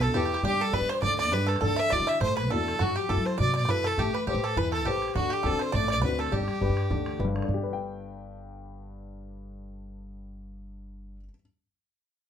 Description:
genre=celtic folk, Celtic reel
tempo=205 BPM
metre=4/4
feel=swing 54% on 8ths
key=G major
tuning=A4 = 441 Hz
part: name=rich fiddle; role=melody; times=0.0-7.2 s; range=F#4 to E5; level=-29 LUFS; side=right 1 dB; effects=plate reverb
part: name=bluegrass banjo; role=second line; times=0.0-7.2 s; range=F#4 to E5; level=-34 LUFS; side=right 7 dB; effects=none
part: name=mellow hollow wooden flute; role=second line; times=0.0-7.2 s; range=F#4 to E5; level=-35 LUFS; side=left 6 dB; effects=none
part: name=dark baby grand piano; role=accompaniment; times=0.0-11.4 s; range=G2 to G5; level=-33 LUFS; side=left 4 dB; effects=none
part: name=upright bass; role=bass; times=0.0-11.3 s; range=G1 to G3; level=-32 LUFS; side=equal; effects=none
part: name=bodhran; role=percussion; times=0.0-7.6 s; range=none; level=-34 LUFS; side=right 2 dB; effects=none
room=moderate small room ambience, RT60 0.5 s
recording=none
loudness=-24 LUFS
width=side -8 dB against mid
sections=0.0-7.5 A section; 7.5-9.8 B section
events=none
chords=0.4 G; 1.6 Dadd9; 2.8 F#m7b5; 4.0 Amadd9; 5.2 D7; 6.3 G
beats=0.15 | 0.44 0.74 1.03 1.33 | 1.62 1.92 2.21 2.51 | 2.80 3.10 3.39 3.68 | 3.98 4.27 4.57 4.86 | 5.15 5.44 5.74 6.03 | 6.32 6.61 6.90 7.20 | 7.49 7.78 8.07 8.36 | 8.65 8.94 9.23 9.52

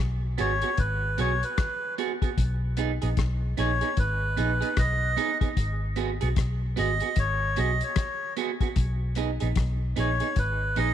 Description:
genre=roots reggae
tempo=75 BPM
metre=4/4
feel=swing 61% on 16ths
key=G# minor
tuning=A4 = 440 Hz
part: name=vintage muted fingered electric bass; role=bass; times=0.0-10.9 s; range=G#1 to B1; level=-27 LUFS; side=equal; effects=none
part: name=melodica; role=melody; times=0.4-10.9 s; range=B4 to D#5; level=-29 LUFS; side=equal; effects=dub echo
part: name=clean electric guitar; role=accompaniment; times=0.4-10.9 s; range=B3 to G#4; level=-32 LUFS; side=right 10 dB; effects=dub echo
part: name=cloth-damped thuddy drum kit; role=drums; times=0.4-10.9 s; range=hi-hat, kick drum, rim click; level=-27 LUFS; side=left 2 dB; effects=none
room=light reverb, small room ambience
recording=1960s-style stereo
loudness=-24 LUFS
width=side -10 dB against mid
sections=0.0-10.9 A section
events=none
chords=0.0 G#m7; 2.4 B6; 5.6 G#m7; 8.8 B6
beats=0.78 1.58 | 2.38 3.17 3.97 4.77 | 5.57 6.37 7.17 7.96 | 8.76 9.56 10.36

